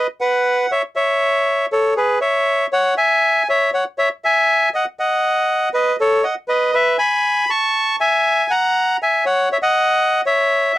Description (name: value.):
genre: tango.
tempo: 119 BPM.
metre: 4/4.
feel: rubato.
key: unclear.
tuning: A4 = 442 Hz.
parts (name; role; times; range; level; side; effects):
bandoneon; solo; 0.0-10.8 s; G#4 to C#6; -14 LUFS; equal; none.
room: little or no reverb.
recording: dry, close 1970s-style studio recording.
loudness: -15 LUFS.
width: side -16 dB against mid.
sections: 0.0-10.8 A section.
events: none.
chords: 0.0 B5; 0.7 A (rootless); 2.7 C#m; 4.7 B; 6.7 E; 8.7 F#5.